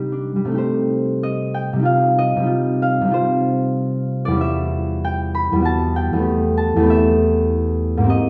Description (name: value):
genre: classical, solo harp piece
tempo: 96 BPM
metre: 3/4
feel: uneven beats, rubato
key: C dorian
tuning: A4 = 440 Hz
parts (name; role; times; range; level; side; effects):
- concert harp; solo; 0.0-8.3 s; E2 to B5; -19 LUFS; equal; none
room: wet recital hall reverb, RT60 1.3 s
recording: none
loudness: -19 LUFS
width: mono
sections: 0.6-8.3 A section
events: none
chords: 0.0 Cmadd9; 0.6 Cm6; 1.9 Fsus2/C; 4.4 Em6; 5.6 Gmaj9/E; 6.2 Asus2/E